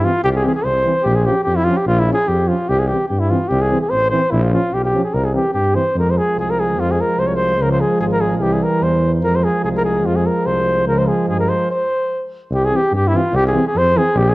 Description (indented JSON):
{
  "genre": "balkan folk, Balkan brass band",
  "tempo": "147 BPM",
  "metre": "2/4",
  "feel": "swing 54% on 16ths",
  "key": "C phrygian dominant",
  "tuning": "A4 = 440 Hz",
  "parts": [
    { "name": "dark cornet", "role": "melody", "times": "0.0-14.3 s", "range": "E4 to Db5", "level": "-17 LUFS", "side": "equal", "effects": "none" },
    { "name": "mellow euphonium", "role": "accompaniment", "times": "0.0-14.0 s", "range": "E3 to F3", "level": "-23 LUFS", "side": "right 3 dB", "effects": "none" },
    { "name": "warm French horn", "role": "accompaniment", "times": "0.0-14.0 s", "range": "G3 to Db4", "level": "-25 LUFS", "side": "left 3 dB", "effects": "none" },
    { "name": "warm tuba", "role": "bass", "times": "0.0-14.3 s", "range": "Ab1 to G2", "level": "-19 LUFS", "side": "equal", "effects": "none" }
  ],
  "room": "moderate recital hall reverb, RT60 1.6 s",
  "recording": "worn, warbling old tape, cassette tape, warbly pitch drift",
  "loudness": "-14 LUFS",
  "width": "side -19 dB against mid",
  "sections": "0.0-6.0 A section; 6.0-12.5 B section; 12.5-14.3 A section",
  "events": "stop 11.7-12.5",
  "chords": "0.0 C; 1.1 Bbm; 2.7 C; 4.3 Bbm; 5.1 C; 6.0 Fm; 7.6 Db; 8.4 C; 9.2 Fm; 10.9 Db; 11.7 N.C.; 12.5 C",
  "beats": "| 0.24 0.65 | 1.06 1.47 | 1.88 2.29 | 2.69 3.10 | 3.51 3.92 | 4.33 4.73 | 5.14 5.55 | 5.96 6.36 | 6.77 7.18 | 7.59 8.00 | 8.41 8.82 | 9.23 9.64 | 10.05 10.46 | 10.87 11.28 | 11.69 12.10 | 12.51 12.92 | 13.33 13.74 | 14.15"
}